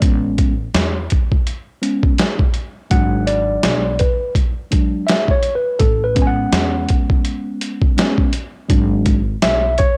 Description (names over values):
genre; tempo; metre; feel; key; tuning
hip hop, jazz-hop; 83 BPM; 4/4; swing 59% on 16ths; A major; A4 = 440 Hz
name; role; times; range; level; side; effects
mellow tine electric piano; accompaniment; 0.0-10.0 s; F#3 to G#5; -21 LUFS; equal; cassette tape
upright bass; bass; 0.0-9.7 s; G#1 to E2; -24 LUFS; equal; tube saturation
boom bap sampler-style drum kit; drums; 0.0-10.0 s; hi-hat, kick drum, snare drum; -18 LUFS; equal; cassette tape
room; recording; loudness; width
little or no reverb; home recording on cassette; -17 LUFS; mono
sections
0.0-10.0 A section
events
tine electric piano solo 0.0-10.0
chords
0.0 Amaj9; 2.9 G#m7b5; 5.8 Amaj9; 8.7 G#m7b5